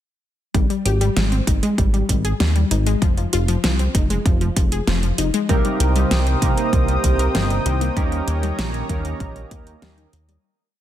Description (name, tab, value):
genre	synthwave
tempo	97 BPM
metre	4/4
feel	straight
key	Ab major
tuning	A4 = 440 Hz
part	wide unison pluck	arpeggios	0.5-10.4 s	F3 to Bb4	-25 LUFS	moving between left 9 dB and equal	auto-pan, digital delay
part	chorused synth bass	bass	0.5-10.4 s	F1 to Eb2	-20 LUFS	equal	sidechain pumping
part	electronic kick drum	drums	0.5-9.6 s	none	-20 LUFS	equal	overdrive
part	pop drum kit	drums	0.5-10.4 s	hi-hat, snare drum	-25 LUFS	equal	overdrive
part	warm analog pad	sustained chords	5.5-10.4 s	C5 to Eb6	-27 LUFS	equal	chorus, sidechain pumping
part	chorused polysynth	stabs	5.5-10.1 s	C3 to C5	-25 LUFS	right 4 dB	digital delay
room	light reverb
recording	dense, heavily limited modern master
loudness	-17 LUFS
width	side -12 dB against mid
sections	0.5-10.4 verse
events	fade-out 7.1-10.4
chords	0.5 Abmaj7(no3); 3.0 Fm; 5.5 Cm7; 8.0 Eb7